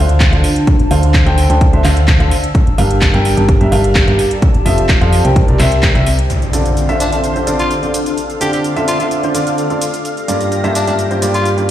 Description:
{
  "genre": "piano house",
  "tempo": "128 BPM",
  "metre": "4/4",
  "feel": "straight",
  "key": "D minor",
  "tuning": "A4 = 441 Hz",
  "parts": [
    { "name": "warm concert grand piano", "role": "riff", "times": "0.0-11.7 s", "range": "G2 to G5", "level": "-16 LUFS", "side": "equal", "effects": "sidechain pumping, ping-pong delay" },
    { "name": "solid FM bass", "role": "bass", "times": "0.0-6.3 s", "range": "F1 to F2", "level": "-13 LUFS", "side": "equal", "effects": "sidechain pumping" },
    { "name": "granular cloud pad", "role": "texture", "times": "0.0-11.7 s", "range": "C4 to E6", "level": "-23 LUFS", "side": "equal", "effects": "built-in reverb, sidechain pumping" },
    { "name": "house drum kit", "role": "drums", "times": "0.1-11.7 s", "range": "cabasa, handclaps, hi-hat", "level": "-21 LUFS", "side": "equal", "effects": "studio reverb" },
    { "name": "electronic kick drum", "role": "drums", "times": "0.2-5.9 s", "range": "none", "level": "-12 LUFS", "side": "equal", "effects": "studio reverb" },
    { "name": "analog string pad", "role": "sustained chords", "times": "6.3-11.7 s", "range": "D4 to Bb6", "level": "-24 LUFS", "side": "left 2 dB", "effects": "ensemble chorus, sidechain pumping" },
    { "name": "impact", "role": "sound effects", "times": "6.3-8.2 s", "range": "none", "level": "-20 LUFS", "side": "equal", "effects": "none" },
    { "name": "growling tenor saxophone", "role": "melody", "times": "7.0-11.5 s", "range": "D4 to G4", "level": "-21 LUFS", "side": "left 2 dB", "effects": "ping-pong delay" }
  ],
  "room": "light reverb",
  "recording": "played on a big sound system in a bare room, large studio reverb",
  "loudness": "-11 LUFS",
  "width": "side -12 dB against mid",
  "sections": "0.0-6.3 A section; 6.3-11.7 B section",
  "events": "impact 6.3-8.2",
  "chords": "0.0 Dm7; 2.5 Gm7; 4.4 Fmaj7; 5.4 C7; 6.3 Dm7; 10.0 Gm7",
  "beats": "0.20 | 0.67 1.14 1.61 2.08 | 2.55 3.02 3.49 3.96 | 4.42 4.89 5.36 5.83 | 6.30 6.77 7.24 7.71 | 8.17 8.64 9.11 9.58 | 10.05 10.52 10.99 11.46"
}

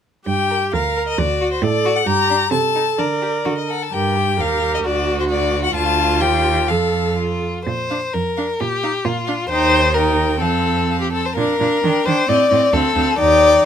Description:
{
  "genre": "quick classical-period movement for string quartet",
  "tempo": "121-138 BPM",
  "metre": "2/4",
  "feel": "rubato",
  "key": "G minor, Bb major from 5.7 s",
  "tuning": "A4 = 440 Hz",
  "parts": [
    { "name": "clear violin", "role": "melody", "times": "0.3-13.7 s", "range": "C5 to Bb5", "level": "-21 LUFS", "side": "left 8 dB", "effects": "none" },
    { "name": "clear viola", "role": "accompaniment", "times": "0.3-13.6 s", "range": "C4 to Bb4", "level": "-21 LUFS", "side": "right 4 dB", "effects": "none" },
    { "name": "rich cello", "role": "bass", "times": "0.3-13.6 s", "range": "D2 to Eb3", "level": "-22 LUFS", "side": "right 4 dB", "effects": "none" },
    { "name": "rich violin", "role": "second line", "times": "0.5-13.7 s", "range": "D4 to D5", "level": "-19 LUFS", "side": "left 4 dB", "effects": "none" }
  ],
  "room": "light reverb",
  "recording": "close, detailed microphones",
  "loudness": "-15 LUFS",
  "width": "side -8 dB against mid",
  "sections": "0.3-7.7 A section; 7.7-13.7 B section",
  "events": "none",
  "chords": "0.3 Gm; 1.2 D; 2.1 Gm; 2.5 Am/C; 3.0 Gm/D (rootless); 3.9 Gm; 4.8 D; 5.7 Dm; 6.2 Ebadd9; 6.7 F; 7.7 Bb; 8.6 Eb/Bb; 9.1 Bb; 9.5 Eb; 10.4 F; 11.4 Bb; 11.8 Ebmaj7; 12.3 Adim; 12.7 Dm7; 13.2 Eb",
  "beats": "| 0.27 0.74 | 1.18 1.63 | 2.06 2.51 | 2.98 3.45 | 3.92 4.39 | 4.85 5.29 | 5.75 6.21 | 6.70 7.18 | 7.67 8.14 | 8.61 9.05 | 9.50 9.95 | 10.41 10.89 | 11.37 11.84 | 12.29 12.73 | 13.19 13.65"
}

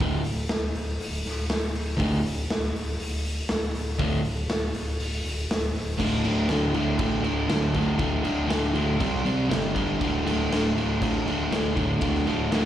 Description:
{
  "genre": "garage rock duo or trio",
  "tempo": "120 BPM",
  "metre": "4/4",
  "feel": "straight",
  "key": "unclear",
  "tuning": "A4 = 440 Hz",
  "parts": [
    { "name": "crunchy overdriven guitar", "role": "riff", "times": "0.0-12.7 s", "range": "D2 to C4", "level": "-24 LUFS", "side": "equal", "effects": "none" },
    { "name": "overdriven picked electric bass", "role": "bass", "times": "0.0-12.7 s", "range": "D1 to C2", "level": "-31 LUFS", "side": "equal", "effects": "tube saturation" },
    { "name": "raw garage drum kit", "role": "drums", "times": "0.0-12.6 s", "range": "crash cymbal, hi-hat, kick drum, snare drum", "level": "-28 LUFS", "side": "equal", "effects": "none" }
  ],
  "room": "light reverb",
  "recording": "live gig heard through the venue's PA, recital hall reverb",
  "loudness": "-23 LUFS",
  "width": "side -11 dB against mid",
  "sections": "0.0-6.0 A section; 6.0-12.7 B section",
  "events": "none",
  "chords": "0.0 D5; 9.0 C5; 9.5 G5; 10.0 D5",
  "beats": "| 0.01 0.51 1.00 1.50 | 2.00 2.50 2.99 3.49 | 3.99 4.49 4.99 5.49 | 5.99 6.49 6.99 7.49 | 7.99 8.49 9.00 9.50 | 10.00 10.51 11.01 11.51 | 12.02 12.52"
}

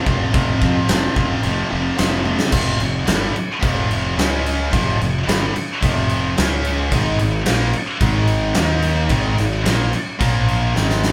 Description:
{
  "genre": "hard rock",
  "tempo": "109 BPM",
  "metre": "4/4",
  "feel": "straight",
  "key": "F minor",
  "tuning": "A4 = 445 Hz",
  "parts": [
    { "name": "high-gain distorted guitar", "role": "riff", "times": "0.0-11.1 s", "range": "F2 to Eb4", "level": "-25 LUFS", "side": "equal", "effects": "distortion" },
    { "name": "scooped high-gain guitar", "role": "riff", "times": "0.0-11.1 s", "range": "F2 to Eb4", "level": "-28 LUFS", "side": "equal", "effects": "distortion" },
    { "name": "fuzz fingered electric bass", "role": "bass", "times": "0.1-11.1 s", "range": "F1 to F2", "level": "-24 LUFS", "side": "equal", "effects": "overdrive" },
    { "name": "huge arena drum kit", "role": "drums", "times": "0.1-11.1 s", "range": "crash cymbal, kick drum, snare drum, toms", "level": "-22 LUFS", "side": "equal", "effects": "none" }
  ],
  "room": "light reverb",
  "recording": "band playing live in one room",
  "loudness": "-18 LUFS",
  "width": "mono",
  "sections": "0.0-2.5 A section; 2.5-11.1 B section",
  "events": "drum fill 2.3, 10.8-11.1",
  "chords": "0.0 F5; 4.2 Db5; 4.7 F5; 6.4 Db5; 6.9 Ab5; 8.6 Eb5; 9.1 Ab5; 10.2 Bb5",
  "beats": "| 0.34 0.89 1.44 1.99 | 2.53 3.08 3.63 4.18 | 4.73 5.28 5.82 6.37 | 6.92 7.47 8.02 8.56 | 9.11 9.66 10.21 10.76"
}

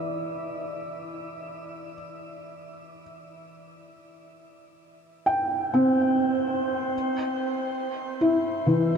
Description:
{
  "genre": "ambient",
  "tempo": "free time",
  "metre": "none",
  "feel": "none",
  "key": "unclear",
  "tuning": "A4 = 439 Hz",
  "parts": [
    { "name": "felt-muted upright piano", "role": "solo", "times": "0.0-9.0 s", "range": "E3 to G5", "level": "-24 LUFS", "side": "equal", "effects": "diffuse ambient delay" }
  ],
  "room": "wet shimmer reverb, RT60 7.8 s",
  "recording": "none",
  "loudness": "-23 LUFS",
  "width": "side -6 dB against mid",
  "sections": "0.0-9.0 A section",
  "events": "none",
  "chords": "0.0 D7sus2; 6.9 C",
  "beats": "free time"
}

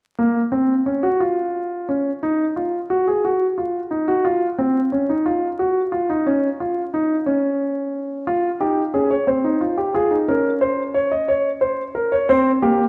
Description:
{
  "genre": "classical, baroque-style 3-part fugue for grand piano",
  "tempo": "60 BPM (dotted quarters)",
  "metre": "12/8",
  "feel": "straight",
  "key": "Bb minor",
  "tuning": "A4 = 441 Hz",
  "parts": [
    { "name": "warm grand piano", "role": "solo", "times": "0.2-12.8 s", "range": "Bb3 to Eb5", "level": "-20 LUFS", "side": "equal", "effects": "none" }
  ],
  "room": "wet recital hall reverb, RT60 1.7 s",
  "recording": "dark, warm production, vinyl crackle, lossy compression artefacts",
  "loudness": "-20 LUFS",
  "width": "mono",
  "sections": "0.2-12.9 A section",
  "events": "none",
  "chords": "0.2 N.C.; 8.3 Fm; 10.3 Bbmadd9/Db; 12.3 C7(no3)",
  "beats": "| 0.18 1.20 2.22 3.24 | 4.25 5.26 6.27 7.27 | 8.27 9.28 10.29 11.28 | 12.29"
}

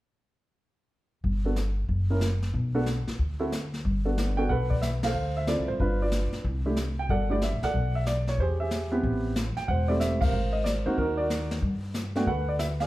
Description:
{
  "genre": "jazz piano trio",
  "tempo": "185 BPM",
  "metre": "4/4",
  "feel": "swing 64% on 8ths",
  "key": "G major",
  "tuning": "A4 = 441 Hz",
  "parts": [
    { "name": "upright bass", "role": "bass", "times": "1.2-12.9 s", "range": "E1 to G2", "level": "-28 LUFS", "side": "equal", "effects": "none" },
    { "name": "jazz brush drum kit", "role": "drums", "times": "1.2-12.9 s", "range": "brushed snare drum, hi-hat, kick drum, ride cymbal, snare drum", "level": "-32 LUFS", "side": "left 1 dB", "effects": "none" },
    { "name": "warm baby grand piano", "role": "melody", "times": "1.5-12.9 s", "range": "A3 to G5", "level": "-28 LUFS", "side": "right 2 dB", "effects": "none" }
  ],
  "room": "moderate large studio reverb, RT60 0.9 s",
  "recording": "heard from further back in the room",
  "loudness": "-25 LUFS",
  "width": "side -16 dB against mid",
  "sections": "1.2-3.8 A section; 3.8-12.9 B section",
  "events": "band accent 5.0, 10.2",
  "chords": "1.2 N.C.; 1.9 F#; 2.5 N.C.; 3.8 Gmaj9; 5.2 Dm9; 5.8 G7; 6.4 C69; 7.7 Bm7; 8.4 E; 9.0 Am7; 10.3 Ab9; 11.6 Gmaj9",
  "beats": "| 1.24 1.57 1.89 2.22 | 2.55 2.87 3.20 3.52 | 3.85 4.17 4.50 4.83 | 5.15 5.47 5.80 6.12 | 6.45 6.77 7.10 7.42 | 7.74 8.07 8.39 8.72 | 9.04 9.36 9.69 10.01 | 10.33 10.66 10.98 11.30 | 11.62 11.95 12.27 12.60"
}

